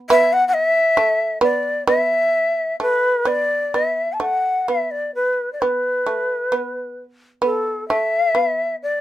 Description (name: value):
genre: japanese traditional, Japanese chamber music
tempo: 65 BPM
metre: 2/4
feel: uneven beats, rubato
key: unclear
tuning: A4 = 440 Hz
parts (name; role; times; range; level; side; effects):
- shamisen; second line; 0.0-9.0 s; A3 to B3; -22 LUFS; right 4 dB; none
- breathy shakuhachi; melody; 0.1-9.0 s; A4 to A5; -18 LUFS; left 1 dB; none
room: moderate booth ambience, RT60 0.2 s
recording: none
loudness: -17 LUFS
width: side -13 dB against mid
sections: 0.0-3.7 A section; 3.7-9.0 B section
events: none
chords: none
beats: | 0.09 0.98 | 1.87 2.80 | 3.74 4.69 | 5.63 6.54 | 7.44 8.35